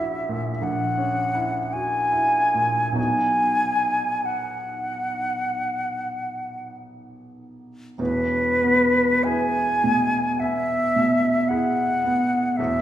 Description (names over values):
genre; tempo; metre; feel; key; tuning
classical, romantic duo for flute and grand piano; 45-59 BPM; 4/4; rubato; E major; A4 = 440 Hz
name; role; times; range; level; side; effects
concert flute; melody; 0.0-12.8 s; B4 to G#5; -22 LUFS; left 1 dB; none
clear baby grand piano; accompaniment; 0.0-12.8 s; E1 to G#4; -25 LUFS; right 1 dB; none
room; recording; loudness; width
wet recital hall reverb, RT60 1.9 s; heard from further back in the room; -20 LUFS; side -12 dB against mid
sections
0.0-8.0 A section; 8.0-12.8 B section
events
none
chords
0.0 F#7/A#; 3.0 B; 8.0 E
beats
0.63 1.73 | 2.97 4.25 5.51 6.75 | 7.99 9.26 10.40 11.50 | 12.59